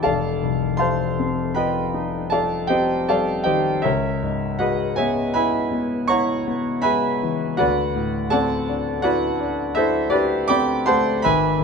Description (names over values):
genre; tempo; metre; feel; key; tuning
classical, impressionist solo piano; 80 BPM; 5/4; rubato; unclear; A4 = 435 Hz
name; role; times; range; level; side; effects
clear concert grand piano; solo; 0.0-11.6 s; F1 to D6; -19 LUFS; equal; none
room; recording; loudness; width
moderate studio reverb, RT60 0.8 s; none; -19 LUFS; side -5 dB against mid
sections
0.0-11.6 A section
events
none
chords
0.1 F9; 3.8 C#m7; 7.6 D9